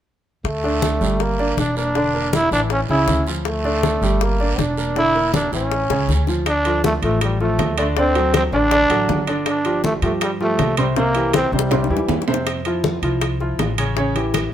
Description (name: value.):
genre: latin, salsa.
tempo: 160 BPM.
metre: 4/4.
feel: straight.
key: D harmonic minor, D minor from 6.5 s.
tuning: A4 = 440 Hz.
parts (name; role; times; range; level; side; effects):
upright bass; bass; 0.4-14.5 s; E1 to G2; -23 LUFS; equal; none.
congas; percussion; 0.4-14.5 s; none; -26 LUFS; left 1 dB; none.
guiro; percussion; 0.4-6.5 s; none; -32 LUFS; right 6 dB; none.
growling trombone; melody; 0.5-12.2 s; G3 to E4; -20 LUFS; equal; none.
bongos; percussion; 0.5-14.5 s; none; -26 LUFS; left 8 dB; none.
clear concert grand piano; accompaniment; 0.6-14.5 s; C3 to D5; -22 LUFS; right 1 dB; none.
timbales; percussion; 6.5-14.5 s; none; -27 LUFS; right 6 dB; none.
room: light reverb.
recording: minimal, uncompressed stereo recording.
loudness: -16 LUFS.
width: side -10 dB against mid.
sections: 0.4-6.5 A section; 6.5-14.5 B section.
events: drum fill 5.9-6.5, 11.3-12.5.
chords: 0.4 D5; 1.2 Gm; 2.0 Bbmaj7#11/E; 2.7 A; 3.5 Dm; 4.2 Gm; 5.0 Bbmaj7#11/E; 5.7 A; 6.5 Dm; 8.0 D7; 9.5 G9sus4; 11.0 C7; 12.5 Fmaj7; 14.0 A7.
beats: | 0.45 0.82 1.20 1.58 | 1.95 2.33 2.71 3.08 | 3.46 3.83 4.21 4.59 | 4.96 5.34 5.71 6.09 | 6.46 6.84 7.21 7.59 | 7.97 8.34 8.72 9.09 | 9.47 9.84 10.22 10.59 | 10.97 11.34 11.72 12.09 | 12.47 12.84 13.22 13.59 | 13.97 14.34.